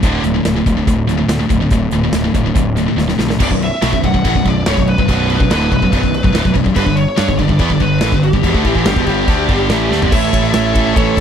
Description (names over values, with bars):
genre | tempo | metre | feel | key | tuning
heavy metal | 143 BPM | 4/4 | straight | B minor | A4 = 442 Hz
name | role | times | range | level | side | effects
heavy high-gain guitar | riff | 0.0-11.2 s | B1 to A4 | -18 LUFS | left 12 dB | distortion
high-gain distorted guitar | riff | 0.0-11.2 s | B1 to D4 | -18 LUFS | right 11 dB | distortion
fuzz picked electric bass | bass | 0.0-11.2 s | B0 to G2 | -18 LUFS | equal | overdrive
big rock drum kit | drums | 0.0-11.2 s | crash cymbal, hi-hat, kick drum, ride cymbal, snare drum, toms | -18 LUFS | equal | none
high-gain lead guitar | melody | 3.4-11.2 s | G4 to F#5 | -20 LUFS | left 1 dB | distortion, slapback echo
bluesy overdriven lead guitar | second line | 9.7-11.2 s | G4 to C#5 | -23 LUFS | right 8 dB | distortion
room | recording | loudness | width
little or no reverb | dry, close 1970s-style studio recording | -12 LUFS | side -8 dB against mid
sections
0.0-3.4 A section; 3.4-10.1 B section; 10.1-11.2 C section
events
drum fill 3.0-3.4, 9.9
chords
0.0 D5; 3.4 Bm; 6.8 G5; 10.1 A